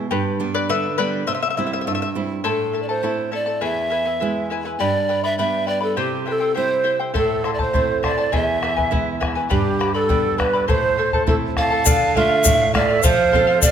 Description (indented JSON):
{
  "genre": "andean folk, Andean ensemble",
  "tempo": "102 BPM",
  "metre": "2/4",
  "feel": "straight",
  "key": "A minor",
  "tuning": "A4 = 440 Hz",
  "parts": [
    { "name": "flamenco guitar", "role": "accompaniment", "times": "0.0-13.7 s", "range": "E2 to A4", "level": "-24 LUFS", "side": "right 5 dB", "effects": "none" },
    { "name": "charango", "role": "accompaniment", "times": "0.1-13.7 s", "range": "E4 to B5", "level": "-24 LUFS", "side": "left 6 dB", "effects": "none" },
    { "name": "mellow hollow polished pan flute", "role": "melody", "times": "2.5-13.7 s", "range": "G4 to F5", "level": "-21 LUFS", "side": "right 1 dB", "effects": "none" },
    { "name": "breathy bright large quena", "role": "second line", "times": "6.0-13.7 s", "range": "G4 to A5", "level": "-25 LUFS", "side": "right 5 dB", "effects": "none" },
    { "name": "bombo", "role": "percussion", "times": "7.1-13.7 s", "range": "none", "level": "-22 LUFS", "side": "left 1 dB", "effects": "none" },
    { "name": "egg shaker", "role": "percussion", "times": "11.9-13.7 s", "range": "none", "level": "-22 LUFS", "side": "left 8 dB", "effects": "none" }
  ],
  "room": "moderate scoring stage reverb, RT60 1.7 s",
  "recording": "none",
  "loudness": "-17 LUFS",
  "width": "side -8 dB against mid",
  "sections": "0.0-2.4 A section; 2.4-11.9 B section; 11.9-13.7 C section",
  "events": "charango solo 0.0-2.4",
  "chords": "0.1 G; 1.3 C; 2.4 Am; 3.6 E; 4.8 G; 6.0 C; 7.2 Am; 8.3 E; 9.5 G; 10.7 Am; 11.9 Dm; 13.0 F"
}